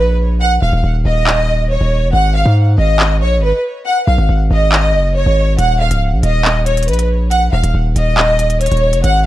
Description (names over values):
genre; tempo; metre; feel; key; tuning
hip hop, drill; 139 BPM; 4/4; half-time; Eb minor; A4 = 440 Hz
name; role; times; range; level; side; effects
rich symphonic violin section; melody; 0.0-9.2 s; Cb5 to Gb5; -16 LUFS; equal; digital delay
distorted 808-style bass; bass; 0.0-9.3 s; Db1 to Ab2; -13 LUFS; equal; distortion
drill drum kit; drums; 1.3-9.1 s; handclaps, hi-hat; -17 LUFS; equal; overdrive
room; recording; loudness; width
digital ambience; dark, warm production; -11 LUFS; side -14 dB against mid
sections
0.0-9.3 A section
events
break 0.0-5.6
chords
0.0 Eb5; 2.1 Ab5; 5.6 Eb5